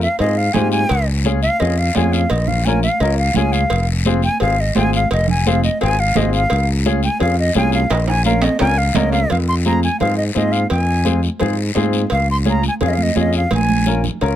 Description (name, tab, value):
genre	latin, cumbia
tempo	171 BPM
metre	4/4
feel	straight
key	F minor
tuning	A4 = 439 Hz
part	silver concert flute	melody	0.0-14.0 s	Eb5 to C6	-20 LUFS	equal	none
part	modern bright fingered electric bass	bass	0.0-14.4 s	F1 to Ab2	-18 LUFS	equal	none
part	guiro	percussion	0.0-14.4 s	none	-28 LUFS	left 8 dB	none
part	clear upright piano	accompaniment	0.2-14.3 s	C4 to Bb4	-22 LUFS	left 5 dB	none
part	congas	percussion	0.2-14.1 s	none	-23 LUFS	right 6 dB	none
part	cowbell and timbales	percussion	0.2-14.4 s	none	-25 LUFS	right 4 dB	none
room	little or no reverb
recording	close, detailed microphones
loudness	-14 LUFS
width	side -11 dB against mid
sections	0.0-9.3 A section; 9.3-14.4 B section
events	flute solo 0.0-9.3; drum fill 7.9-9.3, 13.5-14.4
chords	0.0 Fm; 0.9 Db; 2.3 Bbm; 3.7 Fm; 6.5 Db; 7.9 Bbm; 9.3 Fm; 12.1 Db; 13.5 Bbm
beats	0.20 0.55 | 0.90 1.25 1.61 1.96 | 2.31 2.66 3.01 3.36 | 3.71 4.06 4.41 4.76 | 5.11 5.46 5.81 6.16 | 6.51 6.86 7.21 7.56 | 7.91 8.26 8.61 8.96 | 9.31 9.66 10.01 10.36 | 10.71 11.06 11.41 11.76 | 12.11 12.46 12.81 13.16 | 13.52 13.87 14.22